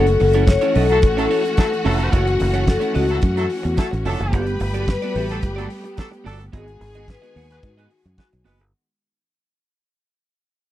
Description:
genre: disco.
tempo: 109 BPM.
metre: 4/4.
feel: straight.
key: F# dorian.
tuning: A4 = 439 Hz.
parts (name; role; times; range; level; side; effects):
vibraphone with soft mallets; melody; 0.0-8.4 s; F#4 to C#5; -21 LUFS; left 4 dB; none.
clear studio string section; second line; 0.0-8.4 s; E4 to B5; -30 LUFS; equal; none.
electric guitar at the edge of break-up; accompaniment; 0.0-8.6 s; B3 to F#5; -28 LUFS; right 9 dB; none.
rich studio string section; sustained chords; 0.0-8.7 s; D#3 to G4; -29 LUFS; equal; none.
fingered electric bass; bass; 0.0-8.7 s; E#1 to G#2; -21 LUFS; equal; none.
damped 70s drum kit; drums; 0.1-8.7 s; hi-hat, kick drum, snare drum; -18 LUFS; equal; none.
clear horn section; stabs; 0.9-8.6 s; F#3 to B4; -27 LUFS; right 1 dB; none.
room: little or no reverb.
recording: dry, close 1970s-style studio recording.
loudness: -16 LUFS.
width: side -13 dB against mid.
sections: 0.0-8.7 A section.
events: fade-out 0.0-8.7.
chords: 0.0 F#m7; 4.3 Gmaj9; 6.5 G#m7.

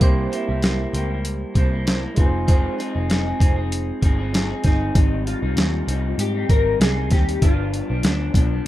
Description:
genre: indie pop, bedroom pop.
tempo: 97 BPM.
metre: 4/4.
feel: swing 55% on 16ths.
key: Ab major.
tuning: A4 = 440 Hz.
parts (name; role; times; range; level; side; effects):
vibraphone with hard mallets; second line; 0.0-3.6 s; C5 to G5; -33 LUFS; right 8 dB; lush chorus, tape echo.
barky tine electric piano; accompaniment; 0.0-5.0 s; Ab3 to C5; -30 LUFS; right 3 dB; overdrive.
electric guitar through a small old amp; accompaniment; 0.0-8.7 s; G2 to Ab4; -27 LUFS; left 2 dB; wide subtle chorus, warbly pitch drift.
vintage muted picked electric bass; bass; 0.0-8.6 s; F1 to Ab2; -23 LUFS; equal; none.
boom bap sampler-style drum kit; drums; 0.0-8.5 s; hi-hat, kick drum, snare drum; -18 LUFS; equal; none.
mellow electric guitar; melody; 4.7-8.7 s; D4 to Bb4; -26 LUFS; left 3 dB; analog chorus.
room: light reverb.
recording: rough home demo mix.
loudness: -18 LUFS.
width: side -14 dB against mid.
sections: 0.0-5.0 A section; 5.0-8.7 B section.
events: none.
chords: 0.0 C7; 2.2 Fm7; 5.0 Abmaj7; 7.4 G7.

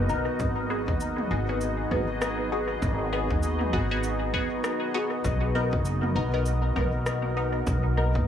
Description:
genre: ambient dub.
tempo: 99 BPM.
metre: 4/4.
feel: swing 60% on 16ths.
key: G# minor.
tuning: A4 = 440 Hz.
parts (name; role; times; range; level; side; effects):
deep dark ambient pad; sustained chords; 0.0-8.3 s; B3 to D#5; -31 LUFS; left 1 dB; chorus, built-in reverb.
upright bass; bass; 0.0-8.3 s; F#1 to D#2; -28 LUFS; equal; none.
bubbling stepped-filter texture; texture; 0.0-8.3 s; D#4 to D#5; -36 LUFS; equal; chorus, built-in reverb.
filtered dub chord stab; stabs; 0.1-8.2 s; B3 to A#4; -32 LUFS; left 2 dB; phaser, analog chorus, dub echo.
organic electronic drum kit; drums; 0.1-7.8 s; cabasa, rim click, toms; -36 LUFS; equal; overdrive, dub echo.
electronic kick drum; drums; 0.4-8.3 s; none; -32 LUFS; equal; overdrive.
room: light reverb.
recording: echo-heavy mix, small room ambience.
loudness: -24 LUFS.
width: side -9 dB against mid.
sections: 0.0-8.3 A section.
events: none.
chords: 0.4 G#m7; 5.2 Bmaj7.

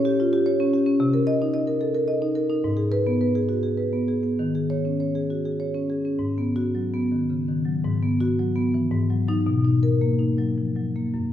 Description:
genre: classical, contemporary piece for solo marimba.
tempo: 96-115 BPM.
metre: 3/4.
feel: rubato.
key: unclear.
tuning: A4 = 440 Hz.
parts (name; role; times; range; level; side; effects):
marimba with medium mallets; solo; 0.0-11.3 s; F#2 to Eb5; -21 LUFS; left 1 dB; none.
room: wet recital hall reverb, RT60 1.4 s.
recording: heard from further back in the room.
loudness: -21 LUFS.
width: side -10 dB against mid.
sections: 0.0-6.2 A section; 6.2-11.3 B section.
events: none.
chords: 0.0 A#m6; 1.0 Cm7; 2.6 G#m; 4.4 D#7sus4; 6.2 G#m7; 7.8 F#9sus4/G#; 8.9 D#m/G#; 9.5 Bmaj7.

